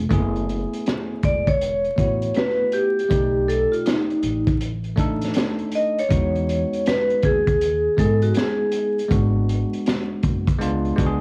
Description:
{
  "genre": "hip hop, jazz-hop",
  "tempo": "80 BPM",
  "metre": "4/4",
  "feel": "swing 64% on 16ths",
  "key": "F# minor",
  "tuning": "A4 = 442 Hz",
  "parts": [
    { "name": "bell-like tine electric piano", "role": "accompaniment", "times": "0.0-11.2 s", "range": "G#3 to D5", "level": "-28 LUFS", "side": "equal", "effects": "cassette tape" },
    { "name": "upright bass", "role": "bass", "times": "0.0-11.2 s", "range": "E1 to G#2", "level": "-27 LUFS", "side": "equal", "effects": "none" },
    { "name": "crunchy breakbeat drum kit", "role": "drums", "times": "0.1-11.2 s", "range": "hi-hat, kick drum, snare drum", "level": "-26 LUFS", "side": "equal", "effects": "cassette tape" },
    { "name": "vibraphone with medium hard mallets", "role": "melody", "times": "1.2-9.1 s", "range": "D#4 to D#5", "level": "-23 LUFS", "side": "equal", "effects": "cassette tape" }
  ],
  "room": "light reverb",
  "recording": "home recording on cassette, vinyl crackle",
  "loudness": "-21 LUFS",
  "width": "mono",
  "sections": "0.1-11.2 A section",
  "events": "vibraphone solo 0.1-11.2",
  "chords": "0.1 F#m11; 3.1 B7alt; 6.1 Emaj7; 9.1 G#m7b5; 10.6 C#7b9"
}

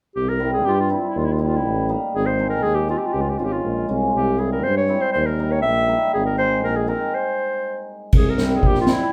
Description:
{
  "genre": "klezmer",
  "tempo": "120 BPM",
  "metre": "2/4",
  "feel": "straight",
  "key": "unclear",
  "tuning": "A4 = 439 Hz",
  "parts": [
    { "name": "warm clarinet", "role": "melody", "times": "0.2-9.1 s", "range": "E4 to E5", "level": "-25 LUFS", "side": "equal", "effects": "none" },
    { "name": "warm tuba", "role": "bass", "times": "0.2-8.9 s", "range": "Ab1 to G2", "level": "-25 LUFS", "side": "equal", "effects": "none" },
    { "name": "cimbalom", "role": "accompaniment", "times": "0.4-9.1 s", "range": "G3 to F4", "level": "-27 LUFS", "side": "equal", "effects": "none" },
    { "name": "street-band drum kit", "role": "drums", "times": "8.1-9.0 s", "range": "crash cymbal, kick drum, snare drum", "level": "-20 LUFS", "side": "equal", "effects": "none" }
  ],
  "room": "wet small room reverb, RT60 0.6 s",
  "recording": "heard from further back in the room",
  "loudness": "-20 LUFS",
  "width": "mono",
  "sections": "0.2-8.1 A section",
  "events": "stop 7.1-8.1",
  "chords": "0.2 C; 1.2 Eb; 2.1 Ab; 3.1 Db; 4.1 C; 5.1 Eb; 6.1 Ab; 7.1 N.C.; 8.1 C"
}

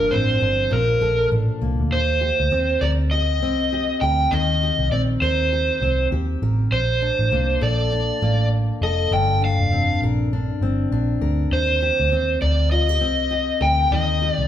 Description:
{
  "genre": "indie pop, bedroom pop",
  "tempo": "100 BPM",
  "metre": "4/4",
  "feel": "swing 60% on 16ths",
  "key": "unclear",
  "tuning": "A4 = 440 Hz",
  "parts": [
    { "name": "overdriven slide guitar", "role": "melody", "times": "0.0-14.5 s", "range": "Bb4 to G5", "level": "-21 LUFS", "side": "right 1 dB", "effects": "none" },
    { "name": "fingerpicked steel-string acoustic guitar", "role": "accompaniment", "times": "0.0-14.5 s", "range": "G2 to Bb4", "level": "-25 LUFS", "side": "left 3 dB", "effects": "warbly pitch drift" },
    { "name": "vintage muted picked electric bass", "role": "bass", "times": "0.0-14.5 s", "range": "F1 to Eb2", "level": "-22 LUFS", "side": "equal", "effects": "none" }
  ],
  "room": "wet large studio reverb, RT60 1.4 s",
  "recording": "band playing live in one room",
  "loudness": "-18 LUFS",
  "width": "side -10 dB against mid",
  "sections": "0.0-1.9 A section; 1.9-14.5 B section",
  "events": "none",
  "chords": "0.0 Gmadd9; 0.7 Bbmaj7; 1.9 Eb6; 6.7 Bbmaj7; 9.1 Gm7; 11.5 Eb6"
}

